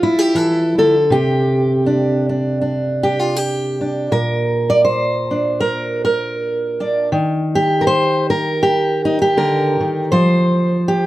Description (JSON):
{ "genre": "folk, solo fingerstyle acoustic guitar", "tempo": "80 BPM", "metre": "4/4", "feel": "swing 57% on 8ths", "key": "unclear", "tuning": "A4 = 441 Hz", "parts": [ { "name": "fingerpicked steel-string acoustic guitar", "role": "solo", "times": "0.0-11.1 s", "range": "Bb2 to D5", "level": "-14 LUFS", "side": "equal", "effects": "none" } ], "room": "moderate studio ambience, RT60 0.5 s", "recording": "dark, warm production", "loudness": "-14 LUFS", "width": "side -16 dB against mid", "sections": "0.0-11.1 A section", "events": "none", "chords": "0.0 Fsus2; 1.1 Csus2; 4.1 Bb; 7.1 Eb; 10.1 Fsus2", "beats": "0.35 | 1.10 1.85 2.61 3.36 | 4.11 4.87 5.62 6.37 | 7.12 7.87 8.62 9.37 | 10.12 10.88" }